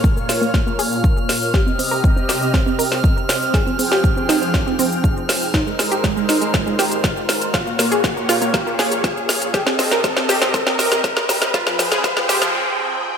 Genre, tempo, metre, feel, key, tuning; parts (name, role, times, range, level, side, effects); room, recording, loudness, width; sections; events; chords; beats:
progressive house; 120 BPM; 4/4; straight; F minor; A4 = 440 Hz
filtered supersaw swell; sustained chords; 0.0-13.2 s; Bb2 to G5; -24 LUFS; equal; phaser, sidechain pumping, low-pass filter
analog pluck; arpeggios; 0.0-12.5 s; F3 to Bb4; -22 LUFS; right 1 dB; chorus, sidechain pumping, tape echo
deep house drum kit; drums; 0.0-12.5 s; hi-hat, shaker, snare drum; -20 LUFS; equal; studio reverb
electronic kick drum; drums; 0.0-12.1 s; -18 LUFS; equal; studio reverb
riser and noise sweep; sound effects; 1.2-13.2 s; -27 LUFS; equal
drifting glass-harmonics texture; texture; 0.0-12.5 s; F6; -28 LUFS; right 1 dB; chorus, built-in reverb, sidechain pumping
moderate lush hall reverb, RT60 2.0 s; high-pass filter; -15 LUFS; side -7 dB against mid
0.0-13.2 A section
build-up 0.0-13.2; drum fill 0.0-12.5; filter sweep on synth pluck 0.0-13.2; filter sweep on supersaw synth 0.0-13.2; filter sweep 0.0-13.2; riser 1.2-12.5; noise sweep 11.5-13.2; break 12.5-13.2
0.0 Bbm; 1.5 Cm; 3.5 Fmadd9; 5.5 Abadd9; 7.5 Bbm; 9.5 Cm; 11.5 Fmadd9
0.04 0.54 1.04 | 1.54 2.04 2.54 3.04 | 3.54 4.04 4.54 5.04 | 5.54 6.04 6.54 7.04 | 7.54 8.04 8.54 9.04 | 9.54 10.04 10.54 11.04 | 11.54 12.04 12.54 13.04